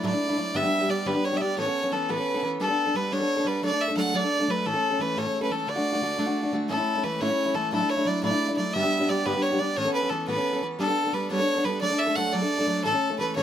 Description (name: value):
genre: celtic folk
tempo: 117 BPM (dotted quarters)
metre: 6/8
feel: straight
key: D major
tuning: A4 = 438 Hz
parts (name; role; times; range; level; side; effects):
- clear fiddle; melody; 0.0-13.4 s; A4 to F#5; -26 LUFS; equal; none
- picked steel-string acoustic guitar; accompaniment; 0.0-13.4 s; G2 to A4; -26 LUFS; equal; none
room: moderate studio reverb, RT60 0.5 s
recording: none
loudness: -23 LUFS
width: side -10 dB against mid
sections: 0.0-6.7 A section; 6.7-13.4 A section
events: none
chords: 0.0 Dadd9/A; 0.6 G; 1.6 Aadd9; 2.6 Gadd9; 3.6 D/F#; 4.7 A; 5.7 D; 6.7 A; 7.7 Dadd9/A; 8.8 G; 9.8 Aadd9; 10.8 Gadd9; 11.8 D; 12.9 A